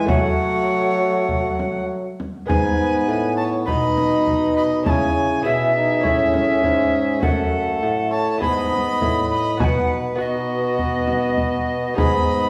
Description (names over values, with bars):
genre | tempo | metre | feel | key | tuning
classical, renaissance-style consort dance | 101 BPM | 4/4 | straight | F# dorian | A4 = 440 Hz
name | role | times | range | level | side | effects
tenor recorder | second line | 0.0-12.5 s | D#5 to B5 | -25 LUFS | equal | none
brilliant trombone | accompaniment | 0.0-12.5 s | G#3 to E4 | -27 LUFS | equal | none
lute | accompaniment | 0.0-12.5 s | F#2 to C#5 | -30 LUFS | equal | none
dark bassoon | bass | 0.0-12.5 s | F#2 to F#3 | -26 LUFS | equal | none
warm violin | melody | 0.1-12.5 s | F#4 to D#5 | -32 LUFS | equal | none
frame drum | percussion | 0.1-12.3 s | none | -27 LUFS | equal | none
room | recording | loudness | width
wet recital hall reverb, RT60 1.5 s | heard from further back in the room | -20 LUFS | mono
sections
0.0-2.5 A section; 2.5-12.5 B section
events
none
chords
0.1 F#m; 2.5 G#m; 3.7 B; 4.9 C#m; 6.0 A; 7.2 F#m; 8.4 G#m; 9.6 B; 12.0 G#m